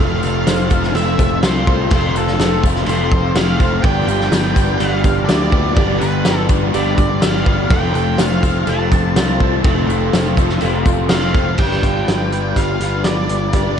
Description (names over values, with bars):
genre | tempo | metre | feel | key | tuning
rock, shoegaze and dream pop | 124 BPM | 4/4 | straight | G mixolydian | A4 = 440 Hz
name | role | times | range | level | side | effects
octave-fuzz lead guitar | melody | 0.0-13.8 s | A4 to A5 | -24 LUFS | right 1 dB | distortion, digital delay
mellow electric guitar | arpeggios | 0.0-13.8 s | G4 to C5 | -27 LUFS | right 14 dB | analog chorus, digital delay
cranked stack guitar | riff | 0.0-13.8 s | F3 to B4 | -24 LUFS | right 14 dB | overdrive, reverse reverb
crunchy overdriven guitar | riff | 0.0-13.8 s | F2 to B4 | -21 LUFS | left 14 dB | ensemble chorus
modern bright picked electric bass | bass | 0.0-13.8 s | F1 to D2 | -20 LUFS | equal | none
tambourine | percussion | 0.2-11.4 s | none | -34 LUFS | left 19 dB | none
loose indie drum kit | drums | 0.5-13.7 s | crash cymbal, hi-hat, kick drum, snare drum | -17 LUFS | equal | none
room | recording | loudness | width
small room ambience | dark, warm production, nothing above 10.7 kHz | -13 LUFS | side -8 dB against mid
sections
0.0-11.6 A section; 11.6-13.8 B section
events
none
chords
0.0 F; 3.8 G7; 7.7 F; 11.6 G7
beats
0.47 0.95 1.43 | 1.91 2.40 2.88 3.36 | 3.84 4.32 4.81 5.29 | 5.77 6.26 6.74 7.22 | 7.71 8.19 8.68 9.16 | 9.65 10.13 10.62 11.10 | 11.59 12.08 12.57 13.05 | 13.54